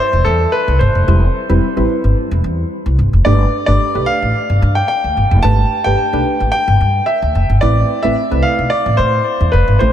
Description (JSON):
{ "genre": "dance-pop", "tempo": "110 BPM", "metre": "4/4", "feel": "straight", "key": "unclear", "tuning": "A4 = 441 Hz", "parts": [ { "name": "clear grand piano", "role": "melody", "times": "0.0-9.9 s", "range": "A4 to A5", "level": "-16 LUFS", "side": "left 1 dB", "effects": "tape echo" }, { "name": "deep mellow chord stab", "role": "accompaniment", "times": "0.0-9.9 s", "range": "G3 to C5", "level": "-21 LUFS", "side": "right 1 dB", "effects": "chorus" }, { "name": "upright bass", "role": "bass", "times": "0.1-9.9 s", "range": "E1 to A2", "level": "-14 LUFS", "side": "equal", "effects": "none" } ], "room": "moderate cathedral reverb, RT60 5.7 s", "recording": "dreamy mix soaked in reverb", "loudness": "-12 LUFS", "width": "side -10 dB against mid", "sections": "0.0-9.9 A section", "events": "none", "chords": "0.0 Cmaj7/E; 3.3 Gadd9; 7.6 Amadd9", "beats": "0.53 | 1.08 1.62 2.17 2.71 | 3.26 3.81 4.35 4.90 | 5.44 5.99 6.53 7.08 | 7.62 8.17 8.71 9.26 | 9.80" }